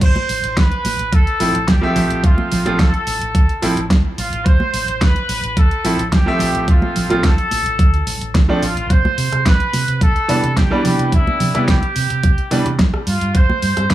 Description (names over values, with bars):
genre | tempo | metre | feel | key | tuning
nu-disco, nu disco | 108 BPM | 4/4 | straight | D dorian | A4 = 440 Hz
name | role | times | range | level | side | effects
clear trumpet section | melody | 0.0-13.9 s | E4 to C5 | -21 LUFS | equal | tape echo
hollow-body short-scale fingered electric bass | bass | 0.0-13.9 s | G1 to C3 | -22 LUFS | right 1 dB | none
electronic kick drum | drums | 0.0-13.9 s | none | -14 LUFS | equal | overdrive
pop drum kit | drums | 0.0-13.9 s | crash cymbal, hi-hat, rim click, snare drum | -22 LUFS | right 1 dB | overdrive
congas and bongos | percussion | 0.2-13.9 s | none | -24 LUFS | right 2 dB | none
bright concert grand piano | accompaniment | 1.4-12.7 s | E3 to E5 | -19 LUFS | right 1 dB | vintage 12-bit sampler grit, tape echo
room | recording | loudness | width
digital ambience | dry, gritty hardware recording | -14 LUFS | side -14 dB against mid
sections
0.0-13.9 A section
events
none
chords
0.0 Dm7; 8.9 Cmaj7; 13.1 G7sus4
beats
| 0.01 0.57 1.13 1.68 | 2.24 2.79 3.35 3.90 | 4.46 5.01 5.57 6.13 | 6.68 7.24 7.79 8.35 | 8.90 9.46 10.02 10.57 | 11.13 11.68 12.24 12.79 | 13.35 13.90